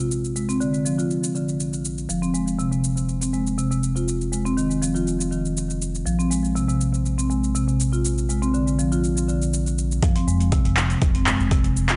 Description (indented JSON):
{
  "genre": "afro house",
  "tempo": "121 BPM",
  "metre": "4/4",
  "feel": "straight",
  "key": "F dorian",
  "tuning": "A4 = 439 Hz",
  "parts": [
    { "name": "marimba with medium mallets", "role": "arpeggios", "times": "0.0-12.0 s", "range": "C3 to F4", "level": "-25 LUFS", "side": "equal", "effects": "sidechain pumping, digital delay" },
    { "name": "smooth synth bass", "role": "bass", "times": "0.0-12.0 s", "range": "F1 to Bb1", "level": "-29 LUFS", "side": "equal", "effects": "sidechain pumping" },
    { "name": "afro-pop drum kit", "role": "drums", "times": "0.0-12.0 s", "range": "handclaps, hi-hat, shaker, toms", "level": "-30 LUFS", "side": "equal", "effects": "studio ambience" },
    { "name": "electronic kick drum", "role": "drums", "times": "10.0-11.6 s", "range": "none", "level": "-23 LUFS", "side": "equal", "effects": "studio ambience" }
  ],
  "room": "little or no reverb",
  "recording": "nothing above 10.7 kHz",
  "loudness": "-22 LUFS",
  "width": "mono",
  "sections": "0.0-10.0 A section; 10.0-12.0 B section",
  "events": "drop 10.0-12.0",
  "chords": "0.0 Bb5; 2.1 F5; 6.1 N.C.; 10.0 Fm"
}